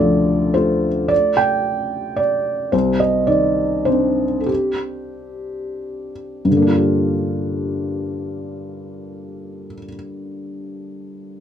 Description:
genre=neoclassical minimalist piano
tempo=87-113 BPM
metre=3/4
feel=rubato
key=G minor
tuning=A4 = 437 Hz
part: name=felt-muted upright piano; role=solo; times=0.0-11.4 s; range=C2 to G5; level=-18 LUFS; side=equal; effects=none
room=moderate studio ambience, RT60 0.5 s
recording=dark, warm production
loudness=-16 LUFS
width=side -9 dB against mid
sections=0.0-6.5 A section; 6.5-10.4 B section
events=slowing down 1.9-6.5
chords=0.0 Dm; 2.7 Cmadd9; 6.5 Gm7

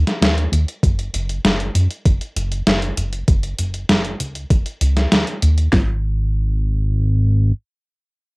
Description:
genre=synthwave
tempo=98 BPM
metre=4/4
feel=straight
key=unclear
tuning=A4 = 440 Hz
part: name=chorused synth bass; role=bass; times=0.0-7.5 s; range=F#1 to F#2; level=-18 LUFS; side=equal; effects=tube saturation
part: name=detuned 8-bit digital drum machine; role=drums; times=0.1-5.7 s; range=hi-hat, snare drum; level=-18 LUFS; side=equal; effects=cassette tape
part: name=pop drum kit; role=drums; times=0.8-5.9 s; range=kick drum, snare drum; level=-14 LUFS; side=equal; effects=overdrive, cassette tape
room=light reverb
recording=home recording on cassette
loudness=-16 LUFS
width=side -27 dB against mid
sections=0.0-5.7 A section; 5.7-8.2 B section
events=none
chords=none

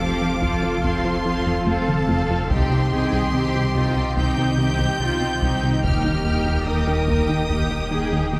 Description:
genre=cinematic, hybrid orchestral and electronic film score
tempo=72 BPM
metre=4/4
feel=straight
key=C minor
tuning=A4 = 440 Hz
part: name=rich symphonic violin section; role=melody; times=0.0-8.4 s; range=A5 to G6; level=-33 LUFS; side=equal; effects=none
part: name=clear symphonic violin section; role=second line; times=0.0-8.4 s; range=G4 to G5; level=-31 LUFS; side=equal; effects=none
part: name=rich studio viola section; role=accompaniment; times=0.0-8.4 s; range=Bb3 to F4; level=-30 LUFS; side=equal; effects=none
part: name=analog string pad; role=sustained chords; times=0.0-8.4 s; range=Eb3 to G5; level=-33 LUFS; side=equal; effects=none
part: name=plucky analog bass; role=riff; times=0.0-8.4 s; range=C2 to F3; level=-28 LUFS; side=equal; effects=none
part: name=dark detuned saw bass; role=bass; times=0.0-8.4 s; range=Eb1 to C2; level=-31 LUFS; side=equal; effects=none
part: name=dark symphonic cello section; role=bass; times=0.0-8.4 s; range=Eb4 to Bb4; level=-31 LUFS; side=equal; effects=none
part: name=rich chamber double bass section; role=bass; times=0.0-8.4 s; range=C2 to F2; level=-30 LUFS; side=equal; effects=none
part: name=taiko ensemble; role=drums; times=0.4-8.3 s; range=none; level=-31 LUFS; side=equal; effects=none
room=wet concert hall reverb, RT60 2.5 s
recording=recorded in a church or concert hall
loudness=-21 LUFS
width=mono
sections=0.0-8.4 A section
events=drum fill 1.7-2.5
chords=0.0 F; 2.5 Cm; 5.8 Eb

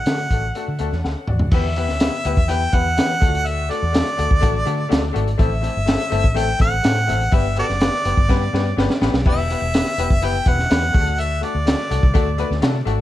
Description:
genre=uptempo 1960s-style soul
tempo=124 BPM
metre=4/4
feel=straight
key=E minor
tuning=A4 = 439 Hz
part: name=mellow harmonica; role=melody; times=0.0-12.8 s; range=F#4 to G5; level=-23 LUFS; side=equal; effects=tape echo
part: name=bright upright piano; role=accompaniment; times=0.1-13.0 s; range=A3 to A5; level=-25 LUFS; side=left 6 dB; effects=none
part: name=vintage muted fingered electric bass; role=bass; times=0.1-13.0 s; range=E1 to E3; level=-22 LUFS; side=equal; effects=none
part: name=crunchy breakbeat drum kit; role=drums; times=0.1-13.0 s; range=crash cymbal, hi-hat, kick drum, snare drum, toms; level=-19 LUFS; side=equal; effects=none
room=light reverb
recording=none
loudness=-16 LUFS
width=side -14 dB against mid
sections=0.0-1.5 A section; 1.5-13.0 B section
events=upright piano fill 0.6-1.5; drum fill 1.0-1.5, 8.3-9.3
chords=0.0 D; 1.5 Em; 3.2 D; 5.4 Am; 7.3 G; 9.3 Em; 10.9 D

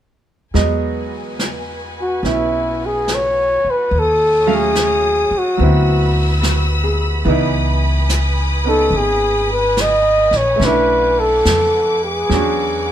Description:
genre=jazz ballad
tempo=72 BPM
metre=4/4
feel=swing 66% on 8ths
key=E major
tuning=A4 = 435 Hz
part: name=bright upright piano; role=accompaniment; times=0.5-12.9 s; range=E3 to F5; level=-22 LUFS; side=right 4 dB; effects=none
part: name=warm symphonic string section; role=sustained chords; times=0.5-12.9 s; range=F#4 to E6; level=-24 LUFS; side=left 1 dB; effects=none
part: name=upright bass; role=bass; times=0.5-12.9 s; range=G#1 to F2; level=-19 LUFS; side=equal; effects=none
part: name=jazz brush drum kit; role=drums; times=0.5-12.9 s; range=brushed snare drum, hi-hat, snare drum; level=-25 LUFS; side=equal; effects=none
part: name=mellow flugelhorn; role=melody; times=2.0-12.9 s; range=E4 to D#5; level=-15 LUFS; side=equal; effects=none
room=moderate studio reverb, RT60 0.7 s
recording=none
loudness=-14 LUFS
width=side -10 dB against mid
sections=0.5-12.9 A section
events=none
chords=0.5 Emaj9; 3.9 D#m7b5; 5.6 D13; 7.3 C#m9; 10.6 Bm11; 12.3 E13

